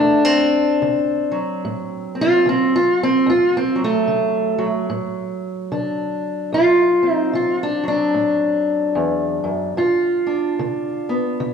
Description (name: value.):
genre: acoustic country blues, solo or duo.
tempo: 74 BPM.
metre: 4/4.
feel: swing 60% on 8ths.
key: D mixolydian.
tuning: A4 = 440 Hz.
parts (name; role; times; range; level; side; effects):
fingerpicked steel-string acoustic guitar; solo; 0.0-11.5 s; D2 to F4; -16 LUFS; equal; none.
room: wet recital hall reverb, RT60 1.7 s.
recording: recorded in a church or concert hall.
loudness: -16 LUFS.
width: side -6 dB against mid.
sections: 0.0-6.5 A section; 6.5-11.5 B section.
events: steel-string acoustic guitar solo 0.0-6.5.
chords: 0.0 D7; 9.8 G7.